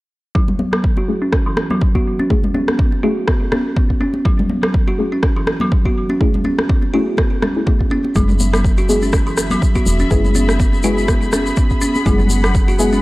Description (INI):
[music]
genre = afro house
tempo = 123 BPM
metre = 4/4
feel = swing 56% on 16ths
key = F# minor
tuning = A4 = 444 Hz
[part]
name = kalimba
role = arpeggios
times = 0.3-13.0 s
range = E3 to F#4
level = -20 LUFS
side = right 1 dB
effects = sidechain pumping, low-pass filter, tape echo
[part]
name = deep mellow chord stab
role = stabs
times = 0.3-13.0 s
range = G#3 to G#4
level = -21 LUFS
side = left 2 dB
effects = chorus, sidechain pumping, tape echo
[part]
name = electronic kick drum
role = drums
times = 0.4-12.7 s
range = none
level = -16 LUFS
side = equal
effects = overdrive, small room ambience
[part]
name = congas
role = percussion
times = 0.5-12.8 s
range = none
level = -23 LUFS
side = left 1 dB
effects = none
[part]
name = electronic rim click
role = drums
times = 0.7-12.5 s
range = none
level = -22 LUFS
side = equal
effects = small room ambience
[part]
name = muted studio string section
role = sustained chords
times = 8.2-13.0 s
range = G#4 to B5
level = -25 LUFS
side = left 2 dB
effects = sidechain pumping
[part]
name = woody FM bass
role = bass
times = 8.2-13.0 s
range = E1 to F#1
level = -19 LUFS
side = equal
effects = transformer saturation, sidechain pumping
[part]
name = tube shaker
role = percussion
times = 8.2-13.0 s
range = none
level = -28 LUFS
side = left 3 dB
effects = none
[sound]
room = light reverb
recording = dry, gritty hardware recording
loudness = -14 LUFS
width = side -19 dB against mid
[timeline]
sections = 0.4-13.0 A section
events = filter sweep on kalimba 0.4-13.0; filter sweep on synth stab 0.4-13.0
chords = 0.4 F#m7; 8.2 E